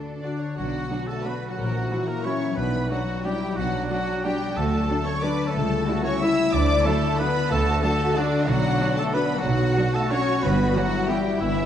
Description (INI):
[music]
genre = classical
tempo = 183 BPM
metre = 3/4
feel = uneven beats, rubato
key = B minor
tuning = A4 = 440 Hz
[part]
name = clear symphonic violin section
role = second line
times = 0.0-11.7 s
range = D4 to E5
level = -32 LUFS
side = left 3 dB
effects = none
[part]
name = concert harp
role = arpeggios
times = 0.0-11.7 s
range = G2 to A5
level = -29 LUFS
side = left 6 dB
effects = none
[part]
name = rich symphonic cello section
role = bass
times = 0.0-11.7 s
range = D4 to B4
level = -32 LUFS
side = right 3 dB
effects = none
[part]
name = clear symphonic violin section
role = melody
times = 0.2-11.7 s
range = D5 to E6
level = -32 LUFS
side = equal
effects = none
[part]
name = warm oboe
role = second line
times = 0.2-11.7 s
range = D4 to E5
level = -32 LUFS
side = right 2 dB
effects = none
[part]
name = warm studio viola section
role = accompaniment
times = 0.2-11.2 s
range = E3 to F#4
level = -33 LUFS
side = right 1 dB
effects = none
[part]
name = mellow French horn section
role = sustained chords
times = 0.2-11.7 s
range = D3 to E4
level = -28 LUFS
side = left 2 dB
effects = none
[part]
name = clear symphonic double bass section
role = bass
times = 0.6-11.7 s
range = G1 to D2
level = -27 LUFS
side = right 3 dB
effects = none
[sound]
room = moderate concert hall reverb, RT60 2.4 s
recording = dark, warm production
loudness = -21 LUFS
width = side -10 dB against mid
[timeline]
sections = 0.6-11.7 A section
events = none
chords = 0.0 D; 0.6 Bm; 1.6 F#7/A#; 2.6 Bm; 4.6 D; 5.5 A7/C#; 6.5 D; 8.5 Bm; 10.4 Em/G